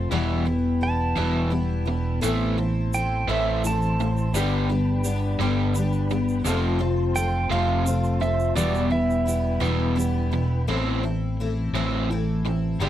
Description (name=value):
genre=folk rock and heartland rock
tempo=57 BPM (dotted quarters)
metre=6/8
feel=straight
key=A minor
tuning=A4 = 441 Hz
part: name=picked twelve-string acoustic guitar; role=accompaniment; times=0.0-12.9 s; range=E2 to G4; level=-27 LUFS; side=left 4 dB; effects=analog chorus
part: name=mellow tonewheel organ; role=sustained chords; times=0.0-10.7 s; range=D4 to C6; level=-34 LUFS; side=equal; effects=slow rotary speaker
part: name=overdriven electric guitar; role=riff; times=0.0-12.9 s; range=E2 to C4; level=-27 LUFS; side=right 2 dB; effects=none
part: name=fingered electric bass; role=bass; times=0.0-12.9 s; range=E1 to A1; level=-26 LUFS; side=equal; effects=none
part: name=pedal steel guitar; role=second line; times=0.8-9.6 s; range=D5 to A5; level=-28 LUFS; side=right 4 dB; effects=none
part: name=egg shaker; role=percussion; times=2.2-10.2 s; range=none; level=-37 LUFS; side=right 5 dB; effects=none
room=little or no reverb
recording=dry, close 1970s-style studio recording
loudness=-21 LUFS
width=side -12 dB against mid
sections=0.0-10.7 A section; 10.7-12.9 B section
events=pedal steel guitar solo 0.0-10.7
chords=0.1 Em; 2.2 Am; 4.3 G; 6.5 F; 8.6 Em; 10.7 Am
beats=| 0.12 1.17 | 2.23 3.29 | 4.34 5.40 | 6.46 7.51 | 8.57 9.63 | 10.68 11.74 | 12.80